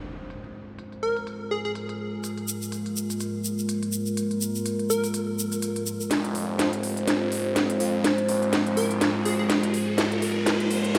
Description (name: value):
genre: bass house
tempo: 124 BPM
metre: 4/4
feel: swing 57% on 16ths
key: F minor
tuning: A4 = 442 Hz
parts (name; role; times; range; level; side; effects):
- dark analog pad; sustained chords; 0.2-11.0 s; Ab3 to C5; -29 LUFS; equal; subtle chorus
- impact and riser; sound effects; 0.0-0.3, 7.4-11.0 s; none; -39 LUFS; equal; none
- garage drum kit; drums; 0.3-11.0 s; hi-hat, snare drum; -30 LUFS; equal; low-pass filter on snare, low-pass filter on hats, low-pass filter on room
- plucky unison lead; melody; 1.0-1.7, 4.9-5.1, 8.8-9.5 s; Ab4 to Bb4; -34 LUFS; equal; analog delay
- egg shaker; percussion; 2.2-6.1 s; none; -36 LUFS; equal; none
- phased detuned saw bass; bass; 6.1-11.0 s; Eb1 to F2; -35 LUFS; equal; phaser, tube saturation, high-pass filter
room: moderate huge ambient reverb, RT60 6.2 s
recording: dreamy mix soaked in reverb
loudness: -26 LUFS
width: mono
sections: 0.0-6.1 A section; 6.1-11.0 B section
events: impact 0.0-0.3; filter sweep on drum 0.0-6.1; build-up 6.1-11.0; drum fill 6.1-11.0; riser 7.4-11.0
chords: 0.0 Fm